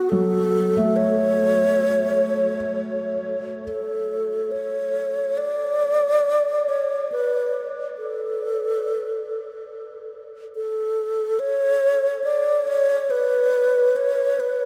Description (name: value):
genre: ambient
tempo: 70 BPM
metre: 4/4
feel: straight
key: unclear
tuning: A4 = 439 Hz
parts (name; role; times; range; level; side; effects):
- breathy mellow wooden-headed alto flute; melody; 0.0-14.7 s; F#4 to D5; -23 LUFS; equal; tape echo
- felt-muted upright piano; arpeggios; 0.0-3.6 s; F#3 to A3; -27 LUFS; equal; tape echo
room: wet huge ambient reverb, RT60 8.0 s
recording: in a vast, echoing space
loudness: -22 LUFS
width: mono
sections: 0.0-3.6 A section; 3.6-14.7 B section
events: none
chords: 0.0 F#m; 3.6 N.C.